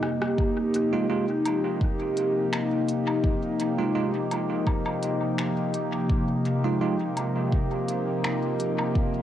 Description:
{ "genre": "ambient dub", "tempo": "84 BPM", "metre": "4/4", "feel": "swing 53% on 16ths", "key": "unclear", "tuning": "A4 = 441 Hz", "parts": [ { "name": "warbly tape-like pad", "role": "sustained chords", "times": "0.0-9.2 s", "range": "F2 to G4", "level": "-25 LUFS", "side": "left 1 dB", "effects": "chorus, built-in reverb, phaser, cassette tape" }, { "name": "organic electronic drum kit", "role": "drums", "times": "0.0-8.9 s", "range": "finger snaps, hi-hat, rim click, woodblock", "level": "-35 LUFS", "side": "left 1 dB", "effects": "cassette tape, dub echo" }, { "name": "electronic kick drum", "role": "drums", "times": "0.4-9.1 s", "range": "none", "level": "-25 LUFS", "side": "equal", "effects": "cassette tape" }, { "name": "bell-like tine electric piano", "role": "stabs", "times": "0.9-7.0 s", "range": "Ab3 to F4", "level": "-32 LUFS", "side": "right 6 dB", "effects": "medium stereo tremolo, cassette tape, dub echo" } ], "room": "light reverb", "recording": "home recording on cassette", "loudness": "-23 LUFS", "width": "side -11 dB against mid", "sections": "0.4-9.2 A section", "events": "break 0.0-0.4; drum fill 0.0-0.4", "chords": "0.4 F7(no3)" }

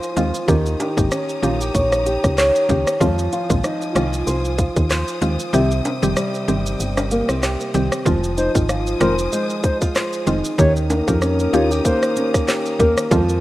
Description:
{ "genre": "dancehall", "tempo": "95 BPM", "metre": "4/4", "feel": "swing 56% on 16ths", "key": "F minor", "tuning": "A4 = 440 Hz", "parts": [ { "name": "warm studio string section", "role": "sustained chords", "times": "0.0-13.4 s", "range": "Db4 to Eb6", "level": "-33 LUFS", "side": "left 2 dB", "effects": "sidechain pumping" }, { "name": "flamenco guitar", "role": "arpeggios", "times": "0.0-13.4 s", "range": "C3 to Db5", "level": "-21 LUFS", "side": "equal", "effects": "tape echo" }, { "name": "island pop drum kit", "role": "drums", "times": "0.0-13.4 s", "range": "handclaps, hi-hat, kick drum, rim click, shaker", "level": "-22 LUFS", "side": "equal", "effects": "none" }, { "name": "maracas and timbales", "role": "percussion", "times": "0.0-13.4 s", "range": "none", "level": "-30 LUFS", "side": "right 1 dB", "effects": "none" }, { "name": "mallet-like synth pluck", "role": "accompaniment", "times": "0.2-13.4 s", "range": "Eb3 to G4", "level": "-23 LUFS", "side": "equal", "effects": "chorus" }, { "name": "solid FM bass", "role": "bass", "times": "0.2-13.4 s", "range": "F1 to F2", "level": "-22 LUFS", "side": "equal", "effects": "none" }, { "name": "hollow clarinet-like synth lead", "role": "melody", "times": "8.4-12.9 s", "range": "Bb4 to Db5", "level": "-24 LUFS", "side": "left 1 dB", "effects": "chorus, tape echo" } ], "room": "light reverb", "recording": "rough home demo mix", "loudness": "-16 LUFS", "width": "side -16 dB against mid", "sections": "0.0-8.1 A section; 8.1-13.4 B section", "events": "kick muted 5.5-8.1", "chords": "0.5 Eb7; 3.0 Fm7; 5.5 Cm; 8.1 Fm7; 10.6 Eb7" }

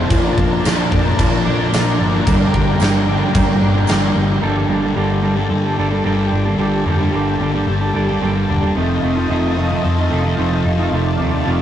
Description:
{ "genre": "rock, shoegaze and dream pop", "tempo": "111 BPM", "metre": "4/4", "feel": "straight", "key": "G minor", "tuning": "A4 = 440 Hz", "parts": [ { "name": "analog string pad", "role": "sustained chords", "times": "0.0-11.6 s", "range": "D4 to A5", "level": "-24 LUFS", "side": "left 1 dB", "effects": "ensemble chorus" }, { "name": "twelve-string electric guitar", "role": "arpeggios", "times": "0.0-11.6 s", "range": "F3 to A4", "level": "-28 LUFS", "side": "left 1 dB", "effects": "none" }, { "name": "semi-hollow electric guitar", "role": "riff", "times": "0.0-11.6 s", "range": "F2 to A4", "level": "-20 LUFS", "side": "right 3 dB", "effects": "none" }, { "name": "thick fuzz guitar", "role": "riff", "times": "0.0-11.6 s", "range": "F2 to Bb3", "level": "-21 LUFS", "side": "left 2 dB", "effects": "distortion" }, { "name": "vintage muted fingered electric bass", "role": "bass", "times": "0.0-11.6 s", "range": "E1 to G2", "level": "-22 LUFS", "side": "equal", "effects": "none" }, { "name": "huge arena drum kit", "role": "drums", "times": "0.1-4.0 s", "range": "crash cymbal, kick drum, snare drum", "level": "-18 LUFS", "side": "equal", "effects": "none" }, { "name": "tambourine", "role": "percussion", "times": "0.7-4.0 s", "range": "none", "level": "-36 LUFS", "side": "right 6 dB", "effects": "none" } ], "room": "wet booth ambience, RT60 0.2 s", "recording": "rough rehearsal-room recording, nothing above 10.9 kHz", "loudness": "-14 LUFS", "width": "side -10 dB against mid", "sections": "0.0-4.4 A section; 4.4-11.6 B section", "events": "none", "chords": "0.1 Bbmaj7; 2.3 Gm; 4.4 Gmadd9; 8.8 F7" }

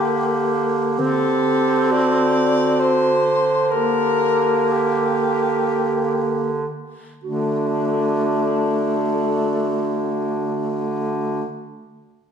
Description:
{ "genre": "classical, lyrical piece for single-reed quartet", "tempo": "free time", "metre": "none", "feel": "none", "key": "unclear", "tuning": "A4 = 439 Hz", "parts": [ { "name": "clear soprano saxophone", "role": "melody", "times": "0.0-11.4 s", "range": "D4 to D5", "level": "-23 LUFS", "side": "left 3 dB", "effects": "none" }, { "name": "dark clarinet", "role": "second line", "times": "0.0-11.4 s", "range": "F#4 to G4", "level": "-24 LUFS", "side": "right 5 dB", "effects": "none" }, { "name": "clear tenor saxophone", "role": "accompaniment", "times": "0.0-11.4 s", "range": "A3 to C4", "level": "-23 LUFS", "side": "left 2 dB", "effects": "none" }, { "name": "bright bass clarinet", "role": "bass", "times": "0.0-11.4 s", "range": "D3", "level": "-23 LUFS", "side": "right 3 dB", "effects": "none" } ], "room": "wet recital hall reverb, RT60 1.5 s", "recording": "heard from further back in the room", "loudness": "-17 LUFS", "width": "side -7 dB against mid", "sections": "0.0-7.2 A section; 7.2-11.3 B section", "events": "slowing down 0.0-7.2", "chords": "0.0 Gm/D; 1.0 D7; 3.7 Gm/D; 7.2 D" }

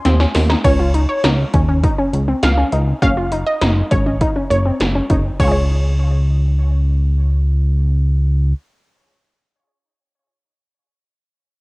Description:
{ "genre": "synth-pop", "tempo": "101 BPM", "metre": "4/4", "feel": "straight", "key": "Db major", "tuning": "A4 = 440 Hz", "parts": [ { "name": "wide unison pluck", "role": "arpeggios", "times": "0.1-9.2 s", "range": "C4 to Db5", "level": "-21 LUFS", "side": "left 1 dB", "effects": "cassette tape, analog delay" }, { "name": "chorused synth bass", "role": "bass", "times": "0.1-8.5 s", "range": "Gb1 to Eb2", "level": "-15 LUFS", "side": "equal", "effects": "none" }, { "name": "80s electronic pad drums", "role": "drums", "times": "0.1-5.5 s", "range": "crash cymbal, hi-hat, kick drum, snare drum", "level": "-19 LUFS", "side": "equal", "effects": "cassette tape" }, { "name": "analog pluck", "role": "second line", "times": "0.6-7.1 s", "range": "Db5 to F5", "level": "-22 LUFS", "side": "right 1 dB", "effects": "chorus, cassette tape, analog delay" } ], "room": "light reverb", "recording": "home recording on cassette", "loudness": "-14 LUFS", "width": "side -23 dB against mid", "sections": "0.6-5.4 A section; 5.4-7.8 B section", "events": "drum fill 0.1-0.6", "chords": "0.0 N.C.; 3.0 Gb5; 5.4 Db" }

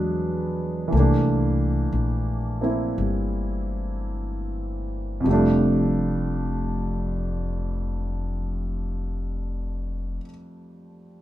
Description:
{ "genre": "jazz ballad", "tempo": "49-63 BPM", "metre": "4/4", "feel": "swing 66% on 8ths", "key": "F major", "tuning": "A4 = 440 Hz", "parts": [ { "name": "warm concert grand piano", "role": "accompaniment", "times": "0.0-11.2 s", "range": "F2 to E4", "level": "-26 LUFS", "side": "right 1 dB", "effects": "none" }, { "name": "upright bass", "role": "bass", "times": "0.0-10.2 s", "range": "F1 to E2", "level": "-25 LUFS", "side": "left 1 dB", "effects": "none" } ], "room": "moderate studio reverb, RT60 0.8 s", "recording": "minimal, uncompressed stereo recording", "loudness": "-22 LUFS", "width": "side -14 dB against mid", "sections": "0.9-5.3 A section; 5.3-10.1 B section", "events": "slowing down 0.0-5.3", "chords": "0.0 E7; 0.9 C13; 5.3 F69" }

